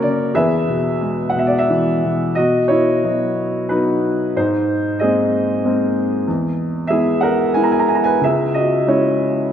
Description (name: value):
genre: classical, lyrical solo piano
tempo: 92 BPM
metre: 3/4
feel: uneven beats, rubato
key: B major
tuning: A4 = 437 Hz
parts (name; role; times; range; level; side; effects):
- warm upright piano; solo; 0.0-9.5 s; C#2 to A#5; -15 LUFS; equal; none
room: moderate concert hall reverb, RT60 2.5 s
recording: none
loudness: -15 LUFS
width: side -9 dB against mid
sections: 0.0-2.4 A section; 2.4-9.5 B section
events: none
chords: 0.4 E; 2.4 B; 4.4 G#add9; 6.3 E; 8.2 C#m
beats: | 0.35 1.01 1.69 | 2.37 3.03 3.70 | 4.36 5.01 5.65 | 6.28 6.91 7.56 | 8.22 8.88